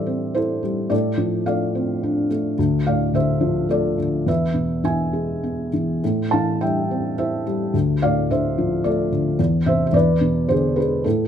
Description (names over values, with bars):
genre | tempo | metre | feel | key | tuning
classical, lyrical solo piano | 107 BPM | 3/4 | rubato | A minor | A4 = 440 Hz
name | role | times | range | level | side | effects
felt-muted upright piano | solo | 0.0-11.3 s | D2 to A5 | -18 LUFS | equal | none
room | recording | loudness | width
light reverb | close, detailed microphones | -18 LUFS | side -9 dB against mid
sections
0.0-11.3 A section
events
none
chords
0.0 Am7; 0.9 F6/A; 2.6 Dm7; 4.3 E; 6.0 Am7; 7.7 Dm7; 9.4 C/E; 9.9 E7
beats
0.36 | 0.91 1.47 2.03 | 2.58 3.13 3.70 | 4.26 4.84 5.43 | 6.02 6.61 7.18 | 7.74 8.30 8.84 | 9.39 9.94 10.50 | 11.06